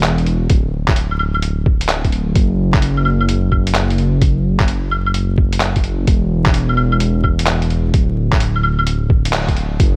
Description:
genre	future garage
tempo	129 BPM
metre	4/4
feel	swing 66% on 16ths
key	unclear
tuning	A4 = 440 Hz
part	dark detuned saw bass	bass	0.0-10.0 s	D1 to F#1	-19 LUFS	equal	sidechain pumping
part	lo-fi sampler-style drum kit	drums	0.0-9.9 s	claves, handclaps, hi-hat	-22 LUFS	equal	none
part	electronic kick drum	drums	0.5-9.9 s	none	-17 LUFS	equal	none
room	little or no reverb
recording	vinyl crackle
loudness	-16 LUFS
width	mono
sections	0.0-9.8 A section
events	band accent 9.3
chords	none

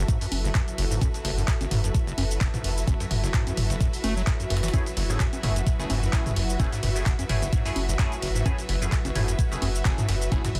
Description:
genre	acid house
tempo	129 BPM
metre	4/4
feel	swing 55% on 16ths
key	F# minor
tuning	A4 = 440 Hz
part	lush unison pad	sustained chords	0.0-10.6 s	F#3 to A4	-38 LUFS	equal	chorus, phaser, sidechain pumping
part	acid bass, square	riff	0.0-10.5 s	F#1 to A3	-33 LUFS	equal	tube saturation, sidechain pumping
part	warm sub bass	bass	0.0-10.6 s	F#1	-31 LUFS	equal	sidechain pumping
part	rich symphonic string section	texture	0.0-10.6 s	F#4 to E5	-38 LUFS	equal	sidechain pumping
part	breakbeat sampler-style drum kit	drums	0.1-10.6 s	hi-hat, snare drum	-43 LUFS	equal	none
part	electronic kick drum	drums	0.1-10.4 s	none	-27 LUFS	equal	none
part	punchy analog drum machine	drums	0.1-10.6 s	cabasa, congas, handclaps, hi-hat, toms	-33 LUFS	equal	none
part	band-passed chord stab	stabs	4.7-10.4 s	A3 to G#4	-38 LUFS	equal	phaser, digital delay
room	digital ambience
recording	dense, heavily limited modern master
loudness	-25 LUFS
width	mono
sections	0.0-10.6 A section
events	none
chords	0.0 F#m7

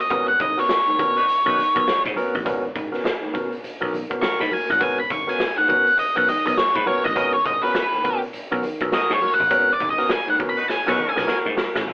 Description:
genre	funk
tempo	102 BPM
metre	4/4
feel	swing 60% on 16ths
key	G# minor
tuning	A4 = 439 Hz
part	octave-fuzz lead guitar	melody	0.0-11.4 s	B4 to C#6	-19 LUFS	equal	distortion
part	barky tine electric piano	stabs	0.1-11.8 s	G#2 to A#4	-25 LUFS	equal	overdrive
part	dry thumbed slap bass	bass	0.1-11.9 s	G#1 to G#2	-27 LUFS	equal	none
part	raw garage drum kit	drums	0.1-11.9 s	hi-hat, kick drum, snare drum	-27 LUFS	equal	none
part	congas	percussion	0.1-11.9 s	none	-38 LUFS	right 1 dB	none
part	clear horn section	second line	1.2-1.7, 10.6-11.2 s	D#4 to B4	-26 LUFS	left 1 dB	none
room	moderate studio reverb, RT60 0.6 s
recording	band playing live in one room, telephone sound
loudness	-18 LUFS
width	side -24 dB against mid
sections	0.0-11.9 A section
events	lead electric guitar solo 0.0-11.9; band accent 0.1-2.5, 9.5-11.9; drum fill 10.7-11.9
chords	0.0 G#m11

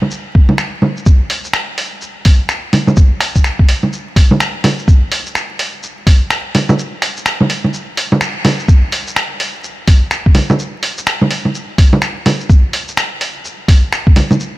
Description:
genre	future garage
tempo	126 BPM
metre	4/4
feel	swing 61% on 16ths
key	none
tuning	none
part	lo-fi sampler-style drum kit	drums	0.0-14.5 s	bongos, finger snaps, hi-hat, shaker	-15 LUFS	right 1 dB	studio reverb
part	electronic kick drum	drums	0.3-14.1 s	none	-7 LUFS	equal	studio reverb
room	digital ambience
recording	vinyl crackle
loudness	-11 LUFS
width	side -18 dB against mid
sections	0.0-8.7 A section; 8.7-14.6 A section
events	break 6.8-8.7; band accent 8.2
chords	none

